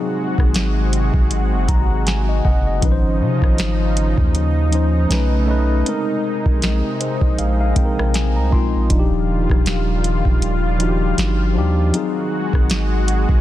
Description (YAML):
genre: contemporary R&B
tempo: 79 BPM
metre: 4/4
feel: swing 58% on 16ths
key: unclear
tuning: A4 = 440 Hz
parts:
  - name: mellow tine electric piano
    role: accompaniment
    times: 0.0-13.4 s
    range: F3 to C6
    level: -22 LUFS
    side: left 2 dB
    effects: slow stereo tremolo
  - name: lush unison pad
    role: sustained chords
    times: 0.0-13.4 s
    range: C3 to Gb4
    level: -24 LUFS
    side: equal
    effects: chorus, sidechain pumping
  - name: long sustained 808-style bass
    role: bass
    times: 0.4-13.4 s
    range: Eb1 to C3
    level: -19 LUFS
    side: equal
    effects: none
  - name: booming analog drum machine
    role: drums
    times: 0.4-13.4 s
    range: hi-hat, kick drum, rim click, snare drum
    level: -18 LUFS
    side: equal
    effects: none
room: little or no reverb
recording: dense, heavily limited modern master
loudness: -15 LUFS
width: side -14 dB against mid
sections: 0.0-13.4 A section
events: tine electric piano fill 1.3-2.8, 6.6-8.9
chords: 0.0 Ab7; 2.8 Dbmaj9/Ab; 5.1 B9; 5.9 Bb9sus4; 8.9 Ebmaj9; 11.9 Ab7